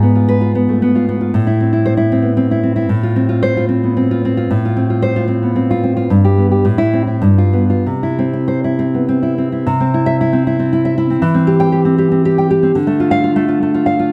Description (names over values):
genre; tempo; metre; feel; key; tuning
romantic piece for solo classical guitar; 94-122 BPM; 3/4; rubato; C major; A4 = 441 Hz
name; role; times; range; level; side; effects
nylon-string guitar; solo; 0.0-14.1 s; G2 to G5; -14 LUFS; equal; none
room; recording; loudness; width
moderate recital hall reverb, RT60 1.5 s; none; -14 LUFS; mono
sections
0.0-9.7 A section; 9.7-14.1 B section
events
none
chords
0.0 G#m6; 1.3 Am; 2.9 F/A; 6.1 G; 6.7 Am; 7.2 G7; 7.9 C; 11.2 C/E; 12.8 Dm